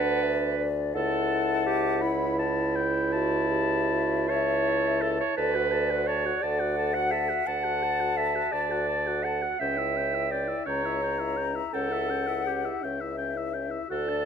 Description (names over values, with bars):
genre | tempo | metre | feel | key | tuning
classical, slow romantic movement for wind quintet | 56 BPM (dotted quarters) | 12/8 | rubato | D major | A4 = 440 Hz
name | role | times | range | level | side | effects
mellow silver concert flute | melody | 0.0-14.3 s | D5 to A#5 | -33 LUFS | left 12 dB | none
warm oboe | second line | 0.0-14.3 s | E5 to B5 | -33 LUFS | left 7 dB | none
mellow French horn | accompaniment | 0.0-14.3 s | C#4 to A4 | -34 LUFS | left 4 dB | none
warm clarinet | accompaniment | 0.0-14.3 s | E4 to F#5 | -28 LUFS | right 7 dB | none
mellow bassoon | bass | 0.0-14.3 s | C#2 to D2 | -31 LUFS | right 1 dB | none
room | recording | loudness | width
moderate scoring stage reverb, RT60 1.6 s | close, detailed microphones | -24 LUFS | side -7 dB against mid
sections
0.0-14.3 A section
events
none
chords
0.0 D; 0.9 A7/C#; 5.4 D; 9.6 C#dim7